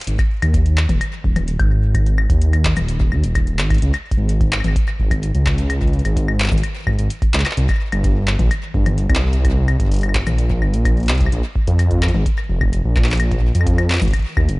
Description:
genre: IDM.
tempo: 128 BPM.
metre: 4/4.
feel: straight.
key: Ab major.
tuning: A4 = 439 Hz.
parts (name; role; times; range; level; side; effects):
booming analog drum machine; drums; 0.0-14.6 s; claves, handclaps, hi-hat, shaker, toms; -24 LUFS; left 2 dB; overdrive, digital delay.
dark detuned saw bass; bass; 0.1-14.6 s; Eb1 to F2; -17 LUFS; equal; none.
electronic kick drum; drums; 0.2-14.5 s; none; -20 LUFS; equal; overdrive.
room: digital ambience.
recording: dark, warm production, nothing above 10.6 kHz.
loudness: -15 LUFS.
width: side -23 dB against mid.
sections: 0.1-14.6 A section.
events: none.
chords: none.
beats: | 0.07 0.54 1.01 1.48 | 1.95 2.42 2.88 3.35 | 3.82 4.29 4.76 5.23 | 5.70 6.17 6.63 7.10 | 7.57 8.04 8.51 8.98 | 9.45 9.91 10.38 10.85 | 11.32 11.79 12.26 12.73 | 13.20 13.66 14.13.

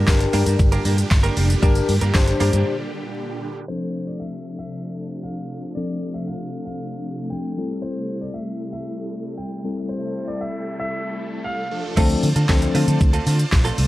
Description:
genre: dance-pop.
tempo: 116 BPM.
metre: 4/4.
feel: straight.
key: D minor.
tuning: A4 = 444 Hz.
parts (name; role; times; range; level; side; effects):
supersaw chords; sustained chords; 0.0-13.9 s; Bb2 to A5; -30 LUFS; right 2 dB; phaser, sidechain pumping.
direct-recorded clean electric guitar; riff; 0.0-2.7, 12.0-13.9 s; A3 to Bb4; -27 LUFS; right 5 dB; lush chorus.
vintage muted fingered electric bass; bass; 0.0-2.6, 12.0-13.9 s; F1 to D3; -19 LUFS; equal; sidechain pumping.
tine electric piano; accompaniment; 0.1-13.1 s; F3 to C5; -26 LUFS; left 4 dB; sidechain pumping.
pop drum kit; drums; 0.1-2.7, 12.0-13.9 s; crash cymbal, handclaps, hi-hat, kick drum, shaker, snare drum; -19 LUFS; equal; overdrive.
tambourine; percussion; 0.1-2.5 s; none; -40 LUFS; left 9 dB; none.
clear concert grand piano; melody; 3.7-11.8 s; C5 to G5; -33 LUFS; equal; slapback echo.
room: little or no reverb.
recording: vinyl crackle, low-pass filter.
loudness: -20 LUFS.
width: side -16 dB against mid.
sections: 0.0-3.7 A section; 3.7-12.0 B section; 12.0-13.9 A section.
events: drop 0.0-3.7, 12.0-13.9; break 2.7-3.7; filter sweep 3.7-12.0.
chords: 0.0 Gm; 3.7 Dm7; 7.6 Am7; 11.7 Dm7.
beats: 0.08 0.59 1.11 | 1.63 2.15 2.66 3.18 | 3.70 4.21 4.73 5.25 | 5.77 6.28 6.80 7.32 | 7.83 8.35 8.87 9.39 | 9.90 10.42 10.94 11.46 | 11.97 12.49 13.01 13.52.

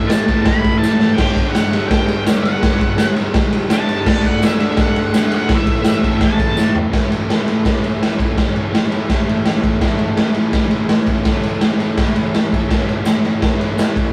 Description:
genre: garage rock duo or trio.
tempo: 167 BPM.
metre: 4/4.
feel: straight.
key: A mixolydian.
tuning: A4 = 441 Hz.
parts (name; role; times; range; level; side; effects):
octave-fuzz lead guitar; melody; 0.0-6.7 s; E5 to B5; -26 LUFS; equal; distortion.
crunchy overdriven guitar; riff; 0.0-14.1 s; G2 to E4; -21 LUFS; equal; none.
raw garage drum kit; drums; 0.1-14.0 s; crash cymbal, kick drum, ride cymbal, snare drum, toms; -18 LUFS; equal; none.
tambourine; percussion; 0.1-6.7, 13.1-13.9 s; none; -41 LUFS; equal; none.
room: moderate stone room reverb, RT60 1.4 s.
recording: rough rehearsal-room recording, warm saturation.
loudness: -16 LUFS.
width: mono.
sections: 0.0-6.9 A section; 6.9-14.1 B section.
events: drum fill 0.8-1.2, 6.6-6.9.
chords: 0.0 A5; 1.2 G5; 4.1 D; 5.5 A5; 6.9 A.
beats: 0.11 0.47 0.83 | 1.19 1.55 1.91 2.27 | 2.63 2.99 3.35 3.71 | 4.07 4.42 4.78 5.14 | 5.50 5.86 6.22 6.58 | 6.94 7.30 7.66 8.02 | 8.38 8.74 9.10 9.46 | 9.82 10.18 10.54 10.90 | 11.26 11.62 11.98 12.35 | 12.71 13.06 13.42 13.78.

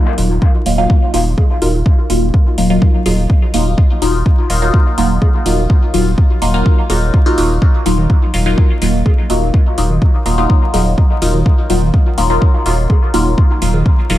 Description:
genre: dub techno.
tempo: 125 BPM.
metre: 4/4.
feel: straight.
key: Eb minor.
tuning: A4 = 440 Hz.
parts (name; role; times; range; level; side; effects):
filtered dub chord stab; stabs; 0.2-14.2 s; Gb3 to F4; -16 LUFS; left 1 dB; phaser, sidechain pumping, dub echo.
pure sine sub bass; bass; 0.2-14.2 s; Eb1; -16 LUFS; equal; sidechain pumping.
electronic hi-hat; drums; 0.2-14.2 s; none; -26 LUFS; right 1 dB; overdrive.
electronic kick drum; drums; 0.4-14.0 s; none; -11 LUFS; equal; overdrive.
bongos and congas; percussion; 1.4-13.8 s; none; -24 LUFS; right 2 dB; overdrive, sidechain pumping on perc, dub echo.
room: light reverb, digital ambience.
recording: vinyl crackle.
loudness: -11 LUFS.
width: side -14 dB against mid.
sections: 0.0-14.2 A section.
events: none.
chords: 0.0 Ebmadd9.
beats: 0.42 0.90 1.38 | 1.86 2.34 2.82 3.30 | 3.78 4.26 4.74 5.22 | 5.70 6.18 6.66 7.14 | 7.62 8.10 8.58 9.06 | 9.54 10.02 10.50 10.98 | 11.46 11.94 12.42 12.90 | 13.38 13.86.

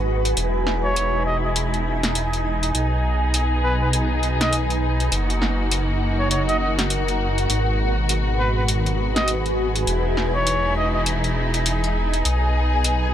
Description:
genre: glitch hop.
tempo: 101 BPM.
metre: 4/4.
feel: swing 60% on 16ths.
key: unclear.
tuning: A4 = 445 Hz.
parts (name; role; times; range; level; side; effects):
rich studio string section; sustained chords; 0.0-13.1 s; B2 to G#4; -27 LUFS; equal; low-pass filter.
phased detuned saw bass; bass; 0.0-13.1 s; E1 to B1; -22 LUFS; equal; phaser.
granular cloud pad; texture; 0.0-13.1 s; D#4 to G#5; -26 LUFS; equal; built-in reverb.
drum and bass drum kit; drums; 0.3-13.0 s; hi-hat, snare drum; -24 LUFS; equal; none.
warm trumpet; melody; 0.8-11.0 s; B4 to D#5; -26 LUFS; equal; ping-pong delay.
room: light reverb.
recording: none.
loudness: -19 LUFS.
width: side -10 dB against mid.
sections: 0.0-13.1 A section.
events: none.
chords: 0.4 Emaj7; 2.7 B6; 5.1 F#6; 7.5 G#m7; 9.9 Emaj7; 12.2 B6.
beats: | 0.37 0.96 1.56 2.15 | 2.75 3.34 3.93 4.53 | 5.12 5.72 6.31 6.90 | 7.50 8.09 8.69 9.28 | 9.87 10.47 11.06 11.66 | 12.25 12.84.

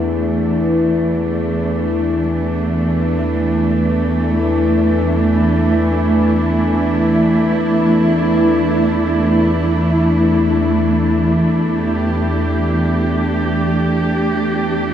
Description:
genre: dark ambient drone.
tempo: free time.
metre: none.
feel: none.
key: unclear.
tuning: A4 = 439 Hz.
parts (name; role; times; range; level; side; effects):
warm studio cello section; sustained chords; 0.0-14.9 s; E3 to G4; -16 LUFS; right 1 dB; none.
analog drone; drone; 0.0-14.9 s; E2 to E3; -17 LUFS; equal; chorus.
room: wet cathedral reverb, RT60 5.3 s.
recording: none.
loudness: -14 LUFS.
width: side -10 dB against mid.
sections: 0.0-11.3 A section; 11.3-14.9 B section.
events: none.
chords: 0.0 D5/E; 11.3 Em.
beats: free time.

